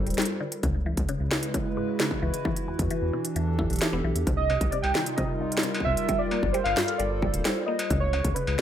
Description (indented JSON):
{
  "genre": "IDM",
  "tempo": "132 BPM",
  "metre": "4/4",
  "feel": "straight",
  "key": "unclear",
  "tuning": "A4 = 441 Hz",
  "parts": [
    { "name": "hollow soft pad", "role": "sustained chords", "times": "0.0-8.6 s", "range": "C3 to C5", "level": "-31 LUFS", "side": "equal", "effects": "chorus, sidechain pumping" },
    { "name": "round analog bass", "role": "bass", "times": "0.0-8.6 s", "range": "D1 to E2", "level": "-28 LUFS", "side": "equal", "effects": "none" },
    { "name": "industrial drum kit", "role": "drums", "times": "0.1-8.6 s", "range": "hi-hat, snare drum, struck metal", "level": "-30 LUFS", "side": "equal", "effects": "none" },
    { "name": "mallet-like synth pluck", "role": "arpeggios", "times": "0.2-8.6 s", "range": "C2 to E4", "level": "-34 LUFS", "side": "left 3 dB", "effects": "chorus, cassette tape, tape echo" },
    { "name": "electronic kick drum", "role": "drums", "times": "0.6-8.3 s", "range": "none", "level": "-30 LUFS", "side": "equal", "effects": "distortion" },
    { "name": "warbly lo-fi synth keys", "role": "melody", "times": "4.4-8.6 s", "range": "Cb5 to G5", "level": "-28 LUFS", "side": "right 2 dB", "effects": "chorus, tape echo" }
  ],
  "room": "light reverb",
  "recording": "rough home demo mix",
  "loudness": "-24 LUFS",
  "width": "side -10 dB against mid",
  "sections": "0.0-8.6 A section",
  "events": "none",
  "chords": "0.0 Gm11; 0.6 Dbm7; 2.5 Em11; 4.3 Cm7; 6.1 Gm11; 7.9 Db7(no3)",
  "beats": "0.18 | 0.63 1.09 1.54 2.00 | 2.45 2.91 3.36 3.81 | 4.27 4.72 5.18 5.63 | 6.09 6.54 7.00 7.45 | 7.91 8.36"
}